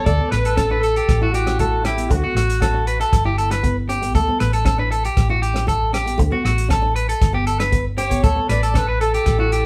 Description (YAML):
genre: highlife guitar band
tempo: 117 BPM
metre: 4/4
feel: straight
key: D major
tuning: A4 = 440 Hz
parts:
  - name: clear horn section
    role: melody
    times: 0.0-3.1, 8.0-9.7 s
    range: E4 to D5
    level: -25 LUFS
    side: equal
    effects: none
  - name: fingerpicked steel-string acoustic guitar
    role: accompaniment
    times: 0.0-9.6 s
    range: A3 to E4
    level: -29 LUFS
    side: equal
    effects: none
  - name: electric guitar at the edge of break-up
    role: arpeggios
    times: 0.0-9.7 s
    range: F#4 to B4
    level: -24 LUFS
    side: equal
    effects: none
  - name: hollow-body short-scale fingered electric bass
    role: bass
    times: 0.1-9.7 s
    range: G1 to D2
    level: -24 LUFS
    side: equal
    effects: none
  - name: warm soul drum kit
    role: drums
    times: 0.1-9.6 s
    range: hi-hat, kick drum, rim click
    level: -24 LUFS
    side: equal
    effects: none
room: moderate studio reverb, RT60 0.7 s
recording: band playing live in one room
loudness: -19 LUFS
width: mono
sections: 0.1-9.7 A section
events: none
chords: 0.1 D5; 1.1 A; 2.1 D; 3.1 G; 4.1 D5; 5.2 A; 6.2 D; 7.2 G; 8.2 D5